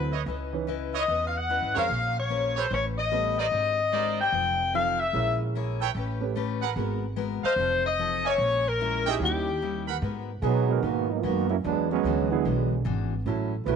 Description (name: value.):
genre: jazz, big band swing.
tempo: 148 BPM.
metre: 4/4.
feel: swing 65% on 8ths.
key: unclear.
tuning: A4 = 440 Hz.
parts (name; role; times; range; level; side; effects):
mellow saxophone section; melody; 0.0-9.8 s; G4 to G5; -26 LUFS; left 4 dB; none.
dark grand piano; accompaniment; 0.0-13.5 s; E3 to B4; -34 LUFS; right 12 dB; none.
picked steel-string acoustic guitar; accompaniment; 0.0-13.8 s; A2 to D#5; -34 LUFS; left 11 dB; none.
upright bass; bass; 0.0-13.8 s; F1 to B2; -30 LUFS; right 1 dB; none.
bright trumpet section; stabs; 0.1-10.0 s; E4 to B5; -34 LUFS; right 13 dB; slapback echo.
clear trombone section; second line; 10.4-13.8 s; D3 to B4; -26 LUFS; right 13 dB; none.
room: light reverb, studio ambience.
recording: 1960s-style stereo with parts hard left and right, nothing above 10.3 kHz.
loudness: -24 LUFS.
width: side -6 dB against mid.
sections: 0.0-10.0 A section; 10.0-13.8 B section.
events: trombone section solo 10.0-13.8.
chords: 0.3 C#m9; 1.9 A#m9; 2.7 A9; 3.5 G#maj9#11; 4.3 F7; 5.1 A#m7b5; 6.0 A9; 6.8 G#m9; 7.6 F7; 8.4 A#m7b5; 9.2 D#7b9; 10.0 G#m9; 11.6 E9.